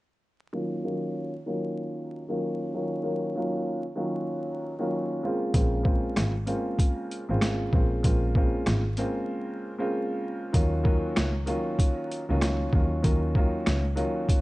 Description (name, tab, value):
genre	hip hop, boom-bap hip-hop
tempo	96 BPM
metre	4/4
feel	swing 61% on 16ths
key	Eb minor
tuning	A4 = 440 Hz
part	dark baby grand piano	accompaniment	0.5-14.4 s	Db3 to F4	-28 LUFS	equal	cassette tape, high-pass filter, low-pass filter
part	warm double bass	bass	5.5-13.9 s	Ab1 to Eb2	-28 LUFS	equal	none
part	boom bap sampler-style drum kit	drums	5.5-14.4 s	hi-hat, kick drum, rim click, snare drum	-24 LUFS	equal	overdrive
room	light reverb, small room ambience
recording	vinyl crackle, nothing above 10.3 kHz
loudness	-25 LUFS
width	side -19 dB against mid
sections	0.5-10.5 A section; 10.5-14.4 B section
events	filter sweep on grand piano 0.5-10.5; break 9.3-10.5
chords	0.5 Ebm9; 5.2 Bbm9; 10.5 Ebm9